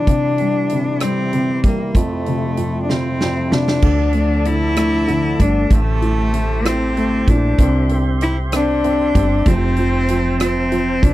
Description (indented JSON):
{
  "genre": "six-eight pop ballad",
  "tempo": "64 BPM (dotted quarters)",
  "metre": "6/8",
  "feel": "straight",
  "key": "D minor",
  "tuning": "A4 = 439 Hz",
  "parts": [
    { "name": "bright cello", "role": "melody", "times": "0.0-11.1 s", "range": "A3 to E4", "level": "-19 LUFS", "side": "left 1 dB", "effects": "none" },
    { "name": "warm upright piano", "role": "accompaniment", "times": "0.0-11.1 s", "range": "F2 to E4", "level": "-21 LUFS", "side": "left 1 dB", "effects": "none" },
    { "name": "tonewheel organ", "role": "sustained chords", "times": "0.0-11.1 s", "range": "C3 to C6", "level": "-28 LUFS", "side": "equal", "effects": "slow rotary speaker" },
    { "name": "huge arena drum kit", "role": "drums", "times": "0.1-11.1 s", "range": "crash cymbal, hi-hat, kick drum, rim click, snare drum", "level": "-18 LUFS", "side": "equal", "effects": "none" },
    { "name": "woody fretless electric bass", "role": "bass", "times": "3.8-11.1 s", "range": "F1 to D2", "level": "-19 LUFS", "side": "equal", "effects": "none" }
  ],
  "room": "little or no reverb",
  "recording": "dry, close 1970s-style studio recording",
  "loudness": "-14 LUFS",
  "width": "side -15 dB against mid",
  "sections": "0.0-3.8 A section; 3.8-11.1 B section",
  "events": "drum fill 2.9-3.8",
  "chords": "0.0 C; 2.0 Fmaj7; 3.8 Dm; 5.7 Am7; 7.6 C; 9.5 Fmaj7"
}